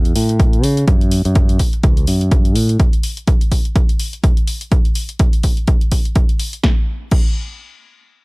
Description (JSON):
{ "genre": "filtered disco house", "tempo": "125 BPM", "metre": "4/4", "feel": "swing 57% on 16ths", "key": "A major", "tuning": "A4 = 445 Hz", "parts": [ { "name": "modern bright fingered electric bass", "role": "bass", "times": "0.0-2.8 s", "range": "C#2 to C#3", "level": "-16 LUFS", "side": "equal", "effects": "sidechain pumping, low-pass filter" }, { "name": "house drum kit", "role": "drums", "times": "0.1-7.3 s", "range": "crash cymbal, hi-hat, snare drum", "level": "-26 LUFS", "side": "left 1 dB", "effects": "sidechain pumping on hats, sidechain pumping on cymbals" }, { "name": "maracas", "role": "percussion", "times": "0.1-2.8 s", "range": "none", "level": "-54 LUFS", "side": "left 3 dB", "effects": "none" }, { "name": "electronic kick drum", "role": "drums", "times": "0.4-7.3 s", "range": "none", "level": "-14 LUFS", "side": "equal", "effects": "none" } ], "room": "little or no reverb", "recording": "dark, warm production", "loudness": "-13 LUFS", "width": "side -28 dB against mid", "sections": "0.0-6.6 A section; 6.6-8.2 B section", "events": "filter sweep on fingered electric bass 0.0-2.8", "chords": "none", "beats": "0.40 | 0.88 1.35 1.83 2.31 | 2.79 3.27 3.75 4.24 | 4.71 5.20 5.67 6.16 | 6.63 7.12" }